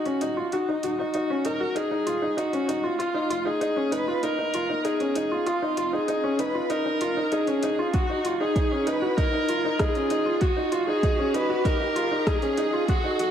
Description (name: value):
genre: piano and strings electronica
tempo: 97 BPM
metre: 4/4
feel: straight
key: unclear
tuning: A4 = 439 Hz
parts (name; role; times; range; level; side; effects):
- warm viola; melody; 0.0-13.3 s; Eb4 to Cb5; -27 LUFS; equal; none
- felt-muted upright piano; riff; 0.0-13.3 s; Db4 to Gb4; -26 LUFS; equal; none
- riser; sound effects; 0.0-13.3 s; none; -35 LUFS; right 1 dB; none
- deep house drum kit; drums; 0.1-13.3 s; hi-hat, rim click; -35 LUFS; left 1 dB; overdrive
- warm sub bass; bass; 0.2-13.3 s; Eb1 to B1; -46 LUFS; equal; tube saturation, sidechain pumping, high-pass filter
- electronic kick drum; drums; 7.9-13.0 s; none; -25 LUFS; equal; overdrive
room: moderate scoring stage reverb, RT60 1.5 s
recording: none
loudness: -23 LUFS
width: side -9 dB against mid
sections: 0.0-13.3 A section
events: build-up 0.0-13.3; riser 0.0-13.3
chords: 0.0 Ebmadd9; 3.0 Ebsus4; 7.9 Gbadd9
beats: | 0.52 1.14 1.76 2.38 | 3.00 3.61 4.23 4.85 | 5.47 6.09 6.71 7.33 | 7.94 8.56 9.18 9.80 | 10.42 11.04 11.65 12.27 | 12.89